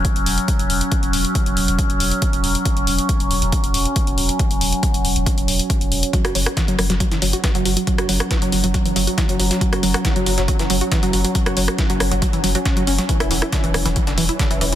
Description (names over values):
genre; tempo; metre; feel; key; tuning
driving peak-time techno; 138 BPM; 4/4; straight; unclear; A4 = 442 Hz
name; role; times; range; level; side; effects
saturated sub bass; bass; 0.0-14.7 s; E1 to F#1; -23 LUFS; equal; overdrive, sidechain pumping, low-pass filter
overtone-sweeping drone; drone; 0.0-14.8 s; F#3 to C#4; -23 LUFS; right 1 dB; chorus, built-in reverb, sidechain pumping
electronic kick drum; drums; 0.0-14.5 s; none; -20 LUFS; equal; overdrive
techno drum kit; drums; 0.0-14.8 s; hi-hat, rim click; -23 LUFS; left 1 dB; overdrive
tight sequenced synth; riff; 6.1-14.8 s; D3 to F#4; -22 LUFS; equal; chorus, sidechain pumping, dub echo
dusty soul sampler-style drum kit; drums; 6.1-14.7 s; hi-hat, snare drum; -30 LUFS; equal; sidechain pumping on hats, high-pass filter on hats, high-pass filter on snare, high-pass filter on room
room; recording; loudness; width
light reverb, digital ambience; dense, heavily limited modern master; -16 LUFS; side -12 dB against mid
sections
0.0-14.8 A section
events
none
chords
0.0 C#madd11/E; 6.1 F#5; 13.1 Dmaj9/E (rootless)